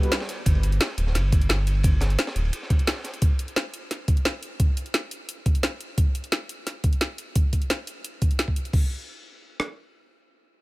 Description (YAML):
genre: liquid drum and bass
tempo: 174 BPM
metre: 4/4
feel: straight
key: G major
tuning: A4 = 439 Hz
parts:
  - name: drum and bass drum kit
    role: drums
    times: 0.0-8.8 s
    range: crash cymbal, hi-hat, snare drum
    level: -28 LUFS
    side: equal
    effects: overdrive
  - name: downlifter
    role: sound effects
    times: 0.3-0.5 s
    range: none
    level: barely audible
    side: none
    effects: none
  - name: crunchy breakbeat drum kit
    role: drums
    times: 0.1-3.1 s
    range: ride cymbal, snare drum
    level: -36 LUFS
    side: equal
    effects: high-pass filter on cymbals, high-pass filter on snare, high-pass filter on room
  - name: sub bass with octave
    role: bass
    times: 0.5-2.5 s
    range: D1 to G1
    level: -22 LUFS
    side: equal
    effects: none
  - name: breakbeat sampler-style drum kit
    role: drums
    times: 0.5-9.7 s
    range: kick drum, rim click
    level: -21 LUFS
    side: equal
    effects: none
room: small room ambience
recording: none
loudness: -22 LUFS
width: side -21 dB against mid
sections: 0.0-8.7 A section; 8.7-10.6 B section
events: none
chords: none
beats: 0.11 | 0.46 0.80 1.15 1.49 | 1.84 2.18 2.53 2.87 | 3.22 3.56 3.91 4.25 | 4.60 4.94 5.29 5.63 | 5.98 6.32 6.67 7.01 | 7.36 7.70 8.04 8.39 | 8.73 9.08 9.42